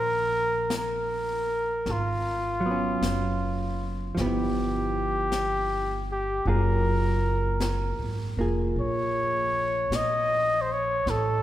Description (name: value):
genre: jazz ballad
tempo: 52 BPM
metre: 4/4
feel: swing 67% on 8ths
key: unclear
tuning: A4 = 439 Hz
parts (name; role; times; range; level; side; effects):
- mellow trumpet; melody; 0.0-11.4 s; F4 to Eb5; -27 LUFS; equal; none
- hollow-body jazz guitar; accompaniment; 0.0-11.1 s; Eb3 to Ab4; -31 LUFS; right 2 dB; none
- upright bass; bass; 0.0-11.4 s; F1 to Bb1; -30 LUFS; equal; none
- jazz brush drum kit; drums; 0.7-11.4 s; brushed snare drum, hi-hat, snare drum; -37 LUFS; left 3 dB; none
room: wet church reverb, RT60 3.2 s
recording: recorded in a church or concert hall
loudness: -24 LUFS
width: side -13 dB against mid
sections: 0.0-11.4 A section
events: none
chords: 0.0 Ebmaj7; 1.9 Abm7; 4.2 G6; 6.5 Gbmaj9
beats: 0.70 | 1.85 3.01 4.16 5.31 | 6.46 7.61 8.76 9.91 | 11.07